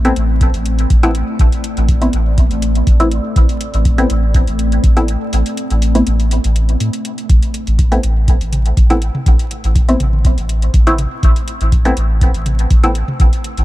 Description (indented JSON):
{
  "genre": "dub techno",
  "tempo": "122 BPM",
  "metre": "4/4",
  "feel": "straight",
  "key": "A minor",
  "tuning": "A4 = 440 Hz",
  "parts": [
    { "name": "deep dark ambient pad", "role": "sustained chords", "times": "0.0-13.6 s", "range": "A3 to D5", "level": "-24 LUFS", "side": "left 1 dB", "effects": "chorus, built-in reverb, vintage 12-bit sampler grit, sidechain pumping" },
    { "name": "filtered dub chord stab", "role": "stabs", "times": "0.0-12.9 s", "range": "A3 to E4", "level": "-20 LUFS", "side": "equal", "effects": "chorus, phaser, sidechain pumping, dub echo" },
    { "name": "soft dub sub bass", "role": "bass", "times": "0.0-13.6 s", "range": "A1 to A2", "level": "-15 LUFS", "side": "equal", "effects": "sidechain pumping" },
    { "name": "electronic hi-hat", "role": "drums", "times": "0.0-13.6 s", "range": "none", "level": "-29 LUFS", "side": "left 1 dB", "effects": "none" },
    { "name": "electronic kick drum", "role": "drums", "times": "0.4-13.3 s", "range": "none", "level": "-13 LUFS", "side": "equal", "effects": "none" },
    { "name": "electronic toms", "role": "percussion", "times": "8.5-13.2 s", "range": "none", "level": "-24 LUFS", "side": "equal", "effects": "sidechain pumping on toms" }
  ],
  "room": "little or no reverb",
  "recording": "dark, warm production, vinyl crackle",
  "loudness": "-11 LUFS",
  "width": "side -16 dB against mid",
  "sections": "0.0-13.6 A section",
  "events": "kick drops out 5.3-7.3",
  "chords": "0.0 Am",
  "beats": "0.41 0.90 | 1.39 1.89 2.38 2.87 | 3.36 3.85 4.34 4.84 | 5.33 5.82 6.31 6.80 | 7.30 7.79 8.28 8.77 | 9.26 9.76 10.25 10.74 | 11.23 11.72 12.21 12.71 | 13.20"
}